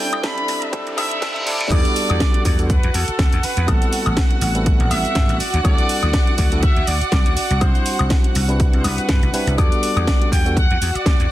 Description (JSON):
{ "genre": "nu-disco, nu disco", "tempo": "122 BPM", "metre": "4/4", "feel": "swing 55% on 16ths", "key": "E minor", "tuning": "A4 = 444 Hz", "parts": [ { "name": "bright trumpet section", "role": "melody", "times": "0.0-11.3 s", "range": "A4 to B5", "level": "-25 LUFS", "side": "equal", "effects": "tape echo" }, { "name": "bright tine electric piano", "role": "accompaniment", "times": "0.0-10.6 s", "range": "G3 to C5", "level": "-26 LUFS", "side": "equal", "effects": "sidechain pumping, tape echo" }, { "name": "dark studio violin section", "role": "sustained chords", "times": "0.0-11.3 s", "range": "D4 to F#5", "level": "-27 LUFS", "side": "right 1 dB", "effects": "sidechain pumping" }, { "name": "riser and reverse cymbal", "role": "sound effects", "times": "0.0-1.7 s", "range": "none", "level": "-28 LUFS", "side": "equal", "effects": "none" }, { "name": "vintage slap bass", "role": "bass", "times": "0.1-11.3 s", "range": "A1 to C3", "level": "-21 LUFS", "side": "equal", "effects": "sidechain pumping, high-pass filter" }, { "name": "house drum kit", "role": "drums", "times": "0.1-11.3 s", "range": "crash cymbal, hi-hat, shaker, snare drum, woodblock", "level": "-25 LUFS", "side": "equal", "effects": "overdrive" }, { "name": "electronic kick drum", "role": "drums", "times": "0.2-11.2 s", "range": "none", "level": "-17 LUFS", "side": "equal", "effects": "overdrive" } ], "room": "digital ambience", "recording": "dense, heavily limited modern master, high-pass filter", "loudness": "-15 LUFS", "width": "side -14 dB against mid", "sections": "0.0-1.7 A section; 1.7-11.3 B section", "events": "build-up 0.0-1.7; riser 0.0-1.7; reverse cymbal 0.7-1.7; drop 1.7-11.3", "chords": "0.0 Cadd9; 1.7 Em11; 3.7 Am7; 5.4 D7sus4; 7.4 Cmaj9; 9.6 Em11" }